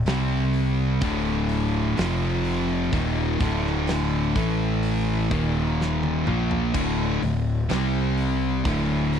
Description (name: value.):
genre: stoner and doom metal.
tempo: 63 BPM.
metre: 4/4.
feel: straight.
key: D phrygian.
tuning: A4 = 440 Hz.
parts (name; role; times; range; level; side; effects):
fuzz fingered electric bass; bass; 0.0-9.2 s; D1 to C2; -28 LUFS; equal; overdrive.
distorted electric guitar; riff; 0.1-9.2 s; D2 to C4; -29 LUFS; equal; distortion.
thick fuzz guitar; riff; 0.1-9.2 s; D2 to C4; -26 LUFS; left 8 dB; distortion.
thick fuzz guitar; riff; 0.1-9.2 s; D2 to C4; -27 LUFS; right 8 dB; distortion.
big rock drum kit; drums; 0.1-9.2 s; crash cymbal, hi-hat, kick drum, snare drum, toms; -31 LUFS; equal; none.
room: studio ambience.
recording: dry, close 1970s-style studio recording.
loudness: -21 LUFS.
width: side -8 dB against mid.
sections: 0.0-9.2 A section.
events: drum fill 5.8-6.7.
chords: 0.1 C5; 1.0 D5; 2.0 F5; 2.9 D5; 4.4 A5; 5.3 Eb5; 6.3 Dm; 7.7 C5; 8.7 D5.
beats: 0.07 1.02 1.98 | 2.93 3.88 4.83 5.79 | 6.74 7.70 8.65.